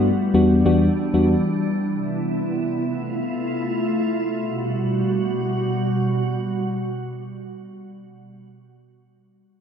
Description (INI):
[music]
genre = afrobeats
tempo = 96 BPM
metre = 4/4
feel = swing 55% on 16ths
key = G major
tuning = A4 = 441 Hz
[part]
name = mellow FM electric piano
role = accompaniment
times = 0.0-1.4 s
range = E2 to F#4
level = -17 LUFS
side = left 2 dB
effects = chorus
[part]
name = glassy FM pad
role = sustained chords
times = 0.0-7.7 s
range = B2 to F#4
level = -22 LUFS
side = right 1 dB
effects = ensemble chorus, built-in reverb
[sound]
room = wet lush hall reverb, RT60 1.6 s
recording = bright 1980s-style digital production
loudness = -19 LUFS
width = side -7 dB against mid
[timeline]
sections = 0.0-4.4 A section; 4.4-6.9 B section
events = none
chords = 0.3 Em7; 1.9 Cmaj7; 2.8 Fmaj7; 4.4 Gmaj7